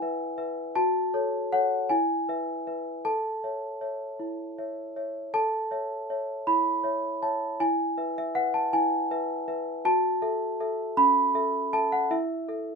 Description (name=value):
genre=classical, lullaby for celesta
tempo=53 BPM (dotted quarters)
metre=6/8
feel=straight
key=A major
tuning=A4 = 440 Hz
part: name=celesta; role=solo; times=0.0-12.8 s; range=C#4 to B5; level=-25 LUFS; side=equal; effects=none
room=light reverb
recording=minimal, uncompressed stereo recording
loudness=-25 LUFS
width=side -5 dB against mid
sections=0.0-5.3 A section; 5.3-12.8 A section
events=none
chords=0.0 E; 0.8 F#m; 1.9 E; 3.0 A; 7.6 E; 9.9 F#m7; 12.1 A5/E